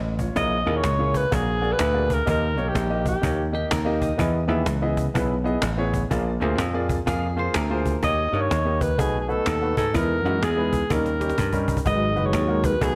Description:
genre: uptempo gospel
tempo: 125 BPM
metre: 4/4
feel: swing 64% on 8ths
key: unclear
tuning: A4 = 440 Hz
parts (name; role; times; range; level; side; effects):
- clear grand piano; accompaniment; 0.0-13.0 s; G#2 to E#5; -29 LUFS; equal; none
- dry thumbed slap bass; bass; 0.0-13.0 s; F#1 to G#2; -27 LUFS; equal; none
- cajon; drums; 0.2-13.0 s; none; -32 LUFS; equal; none
- breathy alto saxophone; melody; 0.4-3.5, 8.0-13.0 s; G4 to D#5; -27 LUFS; equal; none
- clean electric guitar; second line; 3.5-8.0 s; G4 to D#5; -35 LUFS; equal; none
- mellow tonewheel organ; sustained chords; 11.9-13.0 s; D#3 to B4; -30 LUFS; equal; slow rotary speaker, chorus vibrato
room: light reverb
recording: none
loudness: -23 LUFS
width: mono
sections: 0.0-13.0 A section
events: drum fill 10.9-11.9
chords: 0.4 A#m7b5; 1.3 A#aug7; 2.3 D#; 4.2 Emaj7; 6.1 A#7; 8.0 D#7; 9.0 B7; 9.9 Emaj7; 10.9 D#7; 11.9 G#m7

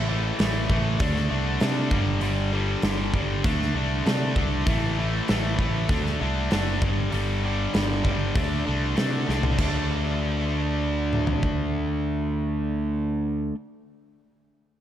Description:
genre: hard rock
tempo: 98 BPM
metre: 4/4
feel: straight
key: unclear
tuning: A4 = 440 Hz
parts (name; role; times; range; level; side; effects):
- distorted electric guitar; riff; 0.0-13.6 s; G2 to D4; -26 LUFS; equal; overdrive
- picked electric bass; bass; 0.0-13.5 s; F#1 to C3; -27 LUFS; equal; none
- big rock drum kit; drums; 0.4-11.6 s; crash cymbal, hi-hat, kick drum, snare drum, toms; -27 LUFS; equal; none
room: light reverb, studio ambience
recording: none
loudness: -22 LUFS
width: side -11 dB against mid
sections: 0.0-9.6 A section; 9.6-12.0 B section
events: drum fill 9.3-9.6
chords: 0.0 A5; 1.0 D5; 1.9 G5; 3.4 D5; 4.7 A5; 5.9 D5; 6.8 G5; 8.4 D5

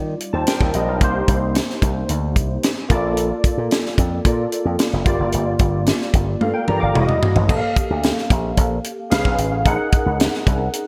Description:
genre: polished 1980s jazz-funk pop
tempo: 111 BPM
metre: 4/4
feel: straight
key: unclear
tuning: A4 = 440 Hz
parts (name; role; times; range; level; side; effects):
- barky tine electric piano; accompaniment; 0.0-10.9 s; G3 to D6; -24 LUFS; equal; ensemble chorus
- slap bass with an envelope filter; bass; 0.0-10.7 s; E1 to Eb3; -24 LUFS; equal; none
- tight funk drum kit; drums; 0.2-10.9 s; crash cymbal, hi-hat, kick drum, snare drum, toms; -21 LUFS; equal; gated reverb
room: moderate lush hall reverb, RT60 2.1 s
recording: bright 1980s-style digital production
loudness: -19 LUFS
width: mono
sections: 0.0-7.5 A section; 7.5-10.9 B section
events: drum fill 6.4-7.5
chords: 0.0 Ebmaj9; 1.0 Cm7; 2.9 Bbmaj7; 5.1 Gm7; 7.0 Emaj9; 7.5 Gm9/Bb; 9.1 Db7; 9.7 Gb69/Bb

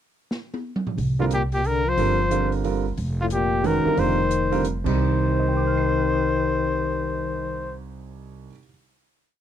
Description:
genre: modal jazz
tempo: 179 BPM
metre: 3/4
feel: swing 63% on 8ths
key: C minor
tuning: A4 = 440 Hz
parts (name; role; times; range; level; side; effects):
- open jazz drum kit; drums; 0.3-4.9 s; crash cymbal, hi-hat, kick drum, snare drum, toms; -33 LUFS; right 1 dB; none
- upright bass; bass; 1.0-8.5 s; F1 to C2; -26 LUFS; equal; none
- warm trumpet; melody; 1.2-7.8 s; F4 to C5; -25 LUFS; equal; none
- breathy trombone; second line; 1.2-7.8 s; A2 to F3; -26 LUFS; left 10 dB; none
- warm concert grand piano; accompaniment; 1.2-8.7 s; C2 to C7; -27 LUFS; right 9 dB; none
room: little or no reverb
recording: dry, close 1970s-style studio recording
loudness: -20 LUFS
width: side -10 dB against mid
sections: 0.0-1.0 pickup bar; 1.0-5.0 A section; 5.0-7.0 final chord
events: drum fill 0.3-1.0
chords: 0.0 N.C.; 1.0 C9sus4; 3.0 F9sus4; 4.8 Cm

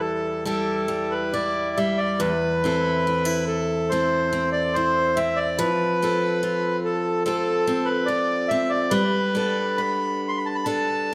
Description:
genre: celtic folk, Celtic slow air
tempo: 70 BPM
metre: 4/4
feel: rubato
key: A minor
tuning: A4 = 441 Hz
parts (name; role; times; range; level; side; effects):
- accordion; melody; 0.0-11.1 s; A4 to C6; -25 LUFS; equal; slapback echo
- picked steel-string acoustic guitar; accompaniment; 0.0-11.1 s; E2 to A4; -27 LUFS; equal; none
room: moderate recital hall reverb, RT60 1.8 s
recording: none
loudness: -23 LUFS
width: mono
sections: 0.0-11.1 A section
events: none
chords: 0.0 Em; 2.2 Am/E; 5.6 F; 8.9 Gadd9

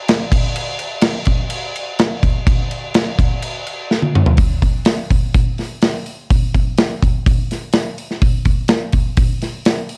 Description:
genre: rock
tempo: 125 BPM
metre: 4/4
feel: straight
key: none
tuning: none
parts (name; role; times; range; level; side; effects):
- big rock drum kit; drums; 0.1-10.0 s; crash cymbal, hi-hat, kick drum, snare drum, toms; -17 LUFS; equal; cassette tape
room: light reverb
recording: home recording on cassette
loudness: -17 LUFS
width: mono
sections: 0.0-4.4 A section; 4.4-10.0 B section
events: drum fill 3.9-4.4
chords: none

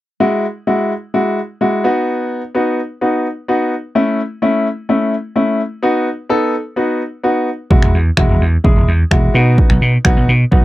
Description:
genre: dance-pop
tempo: 128 BPM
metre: 4/4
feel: straight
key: E major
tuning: A4 = 439 Hz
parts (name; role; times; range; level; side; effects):
- clear baby grand piano; accompaniment; 0.2-10.6 s; G#3 to A4; -15 LUFS; left 1 dB; sidechain pumping
- vintage slap bass; bass; 7.7-10.6 s; E1 to B2; -12 LUFS; equal; sidechain pumping
- punchy analog drum machine; drums; 7.7-10.6 s; finger snaps, kick drum; -13 LUFS; equal; none
room: little or no reverb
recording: dry, close 1970s-style studio recording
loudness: -13 LUFS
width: side -16 dB against mid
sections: 0.2-10.6 A section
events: none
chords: 0.2 Eadd9; 1.8 B; 4.0 A; 5.8 B; 7.7 Eadd9; 9.3 B

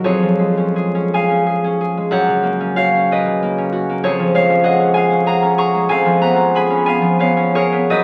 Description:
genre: classical, solo harp piece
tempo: 53-64 BPM (dotted quarters)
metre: 6/8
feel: rubato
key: unclear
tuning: A4 = 440 Hz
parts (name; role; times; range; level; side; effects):
- concert harp; solo; 0.0-8.0 s; E#2 to C#6; -16 LUFS; equal; none
room: moderate studio reverb, RT60 0.7 s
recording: very old 78 rpm record, vinyl crackle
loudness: -16 LUFS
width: mono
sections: 0.0-8.0 A section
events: none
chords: 0.0 C#/E#; 2.1 F#; 4.0 C#/E#; 5.9 C#7/E#

